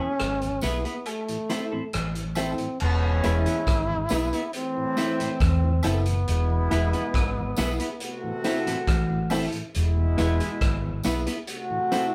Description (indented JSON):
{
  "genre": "roots reggae",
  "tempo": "69 BPM",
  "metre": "4/4",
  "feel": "straight",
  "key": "E major",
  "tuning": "A4 = 437 Hz",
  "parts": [
    { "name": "breathy trombone", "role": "melody", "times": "0.0-9.3 s", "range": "A3 to E4", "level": "-33 LUFS", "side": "equal", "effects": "none" },
    { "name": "clean electric guitar", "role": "accompaniment", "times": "0.0-12.1 s", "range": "B3 to A4", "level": "-32 LUFS", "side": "equal", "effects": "none" },
    { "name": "mellow tonewheel organ", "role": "accompaniment", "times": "0.0-12.0 s", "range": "E2 to E4", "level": "-39 LUFS", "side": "equal", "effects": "none" },
    { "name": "vintage muted fingered electric bass", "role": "bass", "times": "0.2-11.3 s", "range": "E1 to E2", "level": "-27 LUFS", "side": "equal", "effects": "none" },
    { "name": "vintage drum kit", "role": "drums", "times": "0.2-12.1 s", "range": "crash cymbal, hi-hat, kick drum, rim click", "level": "-33 LUFS", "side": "equal", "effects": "none" },
    { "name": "clear grand piano", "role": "stabs", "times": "0.6-12.1 s", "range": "E4 to E5", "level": "-34 LUFS", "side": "equal", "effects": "slapback echo" },
    { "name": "tambourine and woodblock", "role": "percussion", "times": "0.6-12.1 s", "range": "none", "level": "-42 LUFS", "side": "equal", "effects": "slapback echo" },
    { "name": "brilliant trombone section", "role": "second line", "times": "2.8-12.1 s", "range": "G#2 to F#4", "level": "-33 LUFS", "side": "equal", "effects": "slapback echo" }
  ],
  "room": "light reverb",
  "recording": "band playing live in one room",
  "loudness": "-25 LUFS",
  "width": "mono",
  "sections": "0.0-2.8 A section; 2.8-12.1 B section",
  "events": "break 0.0-2.8",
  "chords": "0.0 E; 1.1 Am; 2.8 E; 4.5 Am; 6.3 E; 8.0 Am; 9.7 E; 11.5 Am"
}